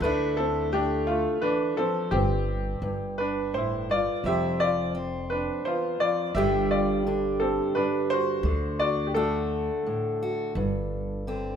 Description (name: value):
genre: acoustic folk-pop ballad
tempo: 85 BPM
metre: 3/4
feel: straight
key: unclear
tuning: A4 = 440 Hz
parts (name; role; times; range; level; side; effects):
- bright grand piano; melody; 0.0-11.6 s; A3 to E5; -27 LUFS; equal; none
- fingerpicked steel-string acoustic guitar; accompaniment; 0.0-11.6 s; E2 to G4; -28 LUFS; equal; none
- upright bass; bass; 0.0-11.6 s; F1 to D2; -32 LUFS; equal; none
room: moderate scoring stage reverb, RT60 2.0 s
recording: minimal, uncompressed stereo recording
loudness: -24 LUFS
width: side -8 dB against mid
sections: 0.0-11.6 A section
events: none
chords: 0.0 Dmadd9; 2.1 C5/G; 2.8 G5; 4.2 F5; 6.3 G5; 8.5 D; 10.6 Gsus4